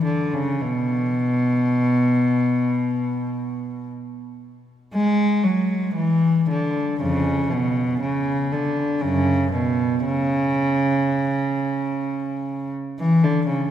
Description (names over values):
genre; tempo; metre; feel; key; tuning
classical, baroque-style suite movement for unaccompanied cello; 54-62 BPM; 4/4; rubato; B minor; A4 = 439 Hz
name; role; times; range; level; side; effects
rich cello; solo; 0.0-13.7 s; E#2 to G#3; -19 LUFS; equal; none
room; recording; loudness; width
wet church reverb, RT60 3.5 s; minimal, uncompressed stereo recording; -19 LUFS; side -10 dB against mid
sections
0.0-4.9 A section; 4.9-13.7 A section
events
none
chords
none